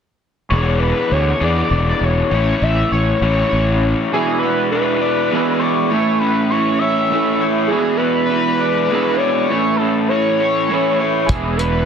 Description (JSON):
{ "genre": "indie rock", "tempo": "67 BPM (dotted quarters)", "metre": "6/8", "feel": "straight", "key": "unclear", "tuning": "A4 = 440 Hz", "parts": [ { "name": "overdriven synth lead", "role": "melody", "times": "0.5-11.9 s", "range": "G#4 to E5", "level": "-19 LUFS", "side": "left 1 dB", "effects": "chorus, digital delay" }, { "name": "raw garage guitar", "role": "riff", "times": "0.5-11.9 s", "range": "A2 to D5", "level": "-20 LUFS", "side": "left 4 dB", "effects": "overdrive" }, { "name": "fuzz fingered electric bass", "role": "bass", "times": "0.5-3.9, 11.3-11.9 s", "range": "E1 to E2", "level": "-17 LUFS", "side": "equal", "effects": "overdrive" }, { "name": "electric guitar through a small old amp", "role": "riff", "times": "4.1-11.9 s", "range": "E2 to E4", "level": "-19 LUFS", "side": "right 6 dB", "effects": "wide subtle chorus" }, { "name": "cloth-damped thuddy drum kit", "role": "drums", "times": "11.3-11.7 s", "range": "hi-hat, kick drum", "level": "-19 LUFS", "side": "equal", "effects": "none" } ], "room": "light reverb, small room ambience", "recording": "dense, heavily limited modern master", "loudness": "-14 LUFS", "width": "side -7 dB against mid", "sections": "0.5-4.1 A section; 4.1-11.9 B section", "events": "none", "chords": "0.5 E7; 2.3 A; 4.1 E7; 5.9 A; 7.7 E7; 9.5 A; 11.3 E7" }